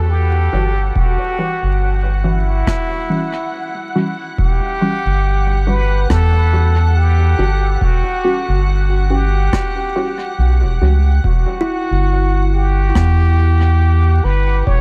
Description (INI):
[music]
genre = ambient dub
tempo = 70 BPM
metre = 4/4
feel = swing 57% on 16ths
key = E dorian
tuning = A4 = 440 Hz
[part]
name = trumpet with plunger mute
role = melody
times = 0.0-14.8 s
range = E4 to C#5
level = -24 LUFS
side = equal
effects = dub echo
[part]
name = soft additive organ-like pad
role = sustained chords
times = 0.0-14.8 s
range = F#5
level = -31 LUFS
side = equal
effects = ensemble chorus, built-in reverb
[part]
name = round analog bass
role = bass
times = 0.0-14.8 s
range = E1 to E2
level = -16 LUFS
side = equal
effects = none
[part]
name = filtered dub chord stab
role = stabs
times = 0.5-11.0 s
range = E3 to F#4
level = -26 LUFS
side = equal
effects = phaser, lush chorus, dub echo
[part]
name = electronic kick drum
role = drums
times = 1.0-14.8 s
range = none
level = -22 LUFS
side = equal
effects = none
[part]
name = rim click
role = drums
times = 2.7-13.2 s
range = none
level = -30 LUFS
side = equal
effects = dub echo
[part]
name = kalimba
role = arpeggios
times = 11.6-14.8 s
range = E4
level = -26 LUFS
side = equal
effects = tape echo
[sound]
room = light reverb, studio ambience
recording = vinyl crackle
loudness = -16 LUFS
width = mono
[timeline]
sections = 0.0-14.8 A section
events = none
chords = 0.0 Em69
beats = 0.10 | 0.96 1.81 2.67 3.53 | 4.38 5.24 6.10 6.96 | 7.81 8.67 9.53 10.38 | 11.24 12.10 12.96 13.81 | 14.67